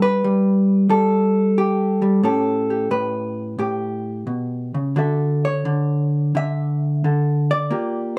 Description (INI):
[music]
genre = solo jazz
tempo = 89 BPM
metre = 4/4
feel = swing 68% on 8ths, rubato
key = unclear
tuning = A4 = 440 Hz
[part]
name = vintage hollow-body jazz guitar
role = solo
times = 0.0-8.2 s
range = A2 to E5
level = -20 LUFS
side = equal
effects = none
[sound]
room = moderate studio ambience, RT60 0.5 s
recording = dark, warm production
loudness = -20 LUFS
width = mono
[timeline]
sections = 0.0-8.2 A section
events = none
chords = 0.0 Gadd9; 2.2 A9; 5.0 Dmaj9